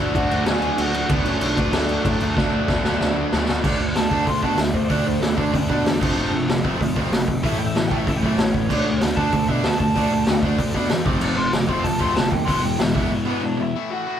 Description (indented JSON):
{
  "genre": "punk rock",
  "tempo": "190 BPM",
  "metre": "4/4",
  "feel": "straight",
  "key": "unclear",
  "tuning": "A4 = 440 Hz",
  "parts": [
    { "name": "lead guitar through a small cranked amp", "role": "melody", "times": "0.0-14.2 s", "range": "A3 to D6", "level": "-26 LUFS", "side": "right 1 dB", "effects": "overdrive" },
    { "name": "biting overdriven guitar", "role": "riff", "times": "0.0-13.7 s", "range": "A2 to D4", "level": "-26 LUFS", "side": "right 4 dB", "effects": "none" },
    { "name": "biting overdriven guitar", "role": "riff", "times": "0.0-13.7 s", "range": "E2 to D4", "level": "-27 LUFS", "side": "right 1 dB", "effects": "none" },
    { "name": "distorted electric guitar", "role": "riff", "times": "0.0-14.2 s", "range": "E2 to D4", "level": "-29 LUFS", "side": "left 7 dB", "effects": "overdrive" },
    { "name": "fuzz picked electric bass", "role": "bass", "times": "0.0-13.1 s", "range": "E1 to B2", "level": "-26 LUFS", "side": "equal", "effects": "overdrive" },
    { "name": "raw garage drum kit", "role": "drums", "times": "0.1-13.0 s", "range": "crash cymbal, hi-hat, kick drum, snare drum", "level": "-22 LUFS", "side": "equal", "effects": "none" }
  ],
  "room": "light reverb",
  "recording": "band playing live in one room",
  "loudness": "-18 LUFS",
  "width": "side -9 dB against mid",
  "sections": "0.0-3.6 A section; 3.6-13.7 B section",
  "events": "half time 0.0-3.6; drum fill 2.4-3.6; lead electric guitar solo 3.6-13.7; break 13.1-13.7",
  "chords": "0.0 D; 3.6 D5; 6.0 F; 7.4 A; 8.7 D5; 11.1 F; 12.5 E",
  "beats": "0.15 0.47 0.78 | 1.10 1.42 1.74 2.05 | 2.37 2.69 3.00 3.32 | 3.64 3.96 4.27 4.59 | 4.91 5.22 5.54 5.86 | 6.17 6.49 6.81 7.12 | 7.44 7.75 8.07 8.38 | 8.70 9.01 9.33 9.64 | 9.96 10.27 10.59 10.90 | 11.22 11.53 11.85 12.16 | 12.48 12.79 13.11 13.42 | 13.73 14.05"
}